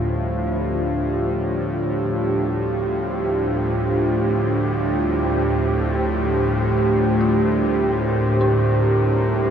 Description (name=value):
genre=dark ambient drone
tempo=free time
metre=none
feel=none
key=D minor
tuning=A4 = 439 Hz
part: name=deep dark ambient pad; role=sustained chords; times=0.0-9.5 s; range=D4 to C5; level=-21 LUFS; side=right 2 dB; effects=chorus, built-in reverb
part: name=dark detuned synth bell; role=arpeggios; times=0.0-9.5 s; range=C4 to C5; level=-35 LUFS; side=left 1 dB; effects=none
part: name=bowed-like drone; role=drone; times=0.0-9.5 s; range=D2 to A2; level=-21 LUFS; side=left 1 dB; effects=built-in reverb
part: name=quartz singing bowl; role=texture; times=0.0-9.5 s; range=none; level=barely audible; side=none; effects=none
room=wet cathedral reverb, RT60 5.5 s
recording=in a vast, echoing space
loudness=-18 LUFS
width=side -8 dB against mid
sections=0.0-9.5 A section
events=none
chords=0.0 Dm; 4.9 Bbadd9/D